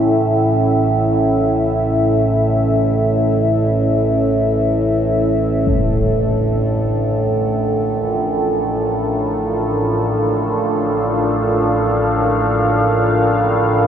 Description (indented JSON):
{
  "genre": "dark ambient drone",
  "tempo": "free time",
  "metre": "none",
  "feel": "none",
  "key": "unclear",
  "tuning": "A4 = 439 Hz",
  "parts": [
    { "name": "dark analog pad", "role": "sustained chords", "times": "0.0-13.9 s", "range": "C#4 to F5", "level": "-16 LUFS", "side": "equal", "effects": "chorus" },
    { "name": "overtone-sweeping drone", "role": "drone", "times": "0.0-13.9 s", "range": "A1 to A2", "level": "-18 LUFS", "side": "right 1 dB", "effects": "chorus, built-in reverb" },
    { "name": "impact", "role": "percussion", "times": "5.7-5.9 s", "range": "none", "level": "-25 LUFS", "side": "left 1 dB", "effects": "low-pass filter on sfx" }
  ],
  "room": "wet cathedral reverb, RT60 6.2 s",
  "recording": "none",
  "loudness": "-14 LUFS",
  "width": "side -8 dB against mid",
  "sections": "0.0-13.9 A section",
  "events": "fade-in on impacts and reversed cymbals 0.0-13.9",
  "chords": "0.0 A; 5.7 Bb/A"
}